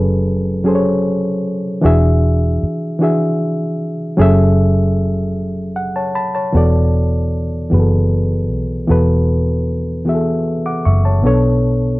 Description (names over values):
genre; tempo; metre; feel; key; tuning
slow six-eight R&B; 51 BPM (dotted quarters); 6/8; straight; unclear; A4 = 440 Hz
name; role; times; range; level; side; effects
reed electric piano; accompaniment; 0.0-12.0 s; B2 to D6; -16 LUFS; equal; none
vintage muted fingered electric bass; bass; 0.0-12.0 s; E1 to B1; -16 LUFS; equal; none
room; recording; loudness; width
little or no reverb; dry, close 1970s-style studio recording; -13 LUFS; side -20 dB against mid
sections
0.0-6.5 A section; 6.5-12.0 B section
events
reed electric piano fill 5.4-6.5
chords
0.0 F#m7; 1.8 E7; 4.2 F#m9; 6.5 E7sus4; 11.2 Bm9